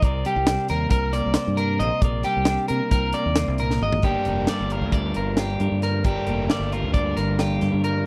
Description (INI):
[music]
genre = math rock and midwest emo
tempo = 269 BPM (eighths)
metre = 9/8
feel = straight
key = unclear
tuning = A4 = 440 Hz
[part]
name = twelve-string electric guitar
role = accompaniment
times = 0.0-8.1 s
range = G2 to C5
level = -31 LUFS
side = equal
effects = none
[part]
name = electric guitar at the edge of break-up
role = arpeggios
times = 0.0-8.1 s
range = G4 to Eb5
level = -28 LUFS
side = equal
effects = spring reverb
[part]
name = modern bright fingered electric bass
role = bass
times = 0.0-8.0 s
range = F1 to C3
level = -28 LUFS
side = equal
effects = none
[part]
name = crisp fusion drum kit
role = drums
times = 0.0-7.9 s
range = hi-hat, kick drum, snare drum, toms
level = -26 LUFS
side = equal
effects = none
[part]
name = overdriven semi-hollow guitar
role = riff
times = 4.0-8.1 s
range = G2 to D4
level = -29 LUFS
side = equal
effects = spring reverb
[sound]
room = studio reverb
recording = dry, close 1970s-style studio recording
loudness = -23 LUFS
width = mono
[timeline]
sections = 0.0-4.0 A section; 4.0-8.1 B section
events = drum fill 3.7-4.0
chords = 0.0 Cm9; 4.0 Gm7